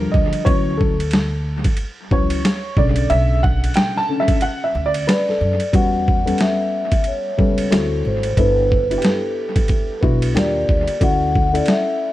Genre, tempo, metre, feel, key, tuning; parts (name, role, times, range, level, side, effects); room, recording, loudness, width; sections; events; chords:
hip hop, jazz-hop; 91 BPM; 4/4; swing 59% on 16ths; E dorian; A4 = 440 Hz
dark upright piano; accompaniment; 0.0-12.1 s; C#3 to A5; -21 LUFS; left 1 dB
upright bass; bass; 0.0-11.6 s; G1 to F#2; -22 LUFS; equal
boom bap sampler-style drum kit; drums; 0.1-11.9 s; hi-hat, kick drum, ride cymbal, snare drum; -19 LUFS; equal; overdrive, dub echo
vibraphone with soft mallets; melody; 5.1-12.1 s; A4 to F#5; -21 LUFS; equal; dub echo
little or no reverb; echo-heavy mix; -15 LUFS; side -15 dB against mid
0.0-5.7 A section; 5.7-12.1 B section
upright piano solo 0.0-5.7; break 4.4-5.7
0.5 Dmaj9; 2.8 Bm7; 5.7 Em69; 7.7 D9; 8.4 G69; 10.4 D#maj9; 11.0 Dmaj9